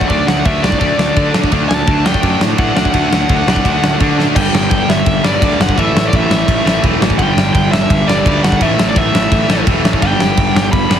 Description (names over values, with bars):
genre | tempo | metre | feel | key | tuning
punk rock | 170 BPM | 4/4 | straight | unclear | A4 = 439 Hz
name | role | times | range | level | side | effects
smooth overdriven lead guitar | melody | 0.0-11.0 s | D5 to B5 | -18 LUFS | left 1 dB | ping-pong delay
cranked stack guitar | riff | 0.0-11.0 s | G2 to D4 | -16 LUFS | right 1 dB | overdrive
fuzz picked electric bass | bass | 0.0-11.0 s | E1 to D3 | -18 LUFS | equal | overdrive
big rock drum kit | drums | 0.0-11.0 s | crash cymbal, kick drum, snare drum | -15 LUFS | equal | none
room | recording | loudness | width
little or no reverb | heavily compressed radio sound, multiband compression | -11 LUFS | side -9 dB against mid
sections
0.0-4.4 A section; 4.4-11.0 B section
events
drum fill 4.2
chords
0.0 D; 4.4 G5; 5.8 A5; 7.2 G5; 8.6 A5; 10.0 G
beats
| 0.11 0.46 0.82 1.17 | 1.53 1.88 2.23 2.59 | 2.94 3.30 3.65 4.01 | 4.36 4.72 5.07 5.42 | 5.78 6.13 6.49 6.84 | 7.19 7.55 7.90 8.25 | 8.61 8.96 9.31 9.67 | 10.02 10.37 10.73